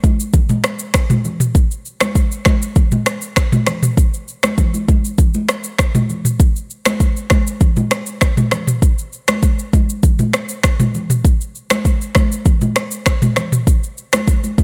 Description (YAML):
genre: afrobeats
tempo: 99 BPM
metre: 4/4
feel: straight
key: none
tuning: none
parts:
  - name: afro-pop drum kit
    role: drums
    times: 0.0-14.6 s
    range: finger snaps, kick drum, rim click, shaker, toms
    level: -16 LUFS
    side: equal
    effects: none
  - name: congas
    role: percussion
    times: 0.0-14.6 s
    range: none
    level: -25 LUFS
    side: equal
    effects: none
room: digital ambience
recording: none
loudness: -16 LUFS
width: mono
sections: 0.0-14.6 A section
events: none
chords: none